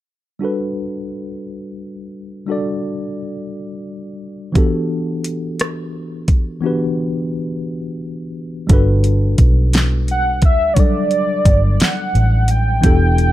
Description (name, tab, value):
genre	slow six-eight R&B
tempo	58 BPM (dotted quarters)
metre	6/8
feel	straight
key	unclear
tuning	A4 = 442 Hz
part	mellow tine electric piano	accompaniment	0.4-13.3 s	E3 to D5	-22 LUFS	left 1 dB	medium stereo tremolo
part	smooth R&B drum kit	drums	4.6-13.3 s	hi-hat, kick drum, rim click, snare drum	-14 LUFS	equal	none
part	vintage muted fingered electric bass	bass	8.7-13.3 s	E1 to D2	-14 LUFS	equal	none
part	warm velvety synth lead	melody	10.1-13.3 s	C#5 to G5	-18 LUFS	right 1 dB	chorus, analog delay
room	little or no reverb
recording	echo-heavy mix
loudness	-14 LUFS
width	side -14 dB against mid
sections	0.4-8.7 A section; 8.7-13.3 B section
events	break 6.6-8.7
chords	0.4 Gmaj9; 4.6 Em11; 8.7 Gmaj9